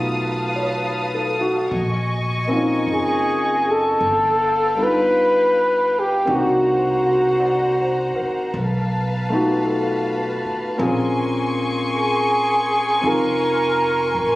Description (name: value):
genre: jazz ballad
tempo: 53 BPM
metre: 4/4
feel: swing 69% on 8ths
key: unclear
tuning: A4 = 441 Hz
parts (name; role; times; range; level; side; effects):
- warm baby grand piano; accompaniment; 0.0-14.4 s; F#3 to D5; -23 LUFS; left 1 dB; none
- warm studio string section; sustained chords; 0.0-14.4 s; Bb4 to Eb6; -26 LUFS; left 1 dB; none
- upright bass; bass; 0.0-14.4 s; F1 to C2; -28 LUFS; equal; none
- breathy flugelhorn; melody; 2.9-14.4 s; Gb4 to B4; -17 LUFS; equal; none
room: light reverb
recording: recorded on a phone in the room, club reverb, compression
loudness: -17 LUFS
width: side -18 dB against mid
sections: 0.0-14.4 A section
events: none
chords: 0.0 B7#11; 1.7 Bbm11; 4.0 G7b13; 6.3 Cm7b5; 8.5 B7#11; 10.8 Bbm9